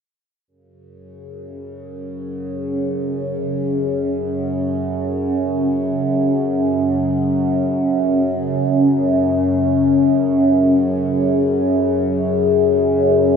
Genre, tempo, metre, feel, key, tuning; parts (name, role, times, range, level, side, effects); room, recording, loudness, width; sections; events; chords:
ambient; free time; A4 = 440 Hz
overtone-sweeping drone; solo; 1.3-13.4 s; F#2 to C#3; -16 LUFS; equal; chorus, built-in reverb, phaser, tape echo
wet plate reverb, RT60 3.3 s; echo-heavy mix; -16 LUFS; side -6 dB against mid
0.5-13.4 A section
0.5 F#5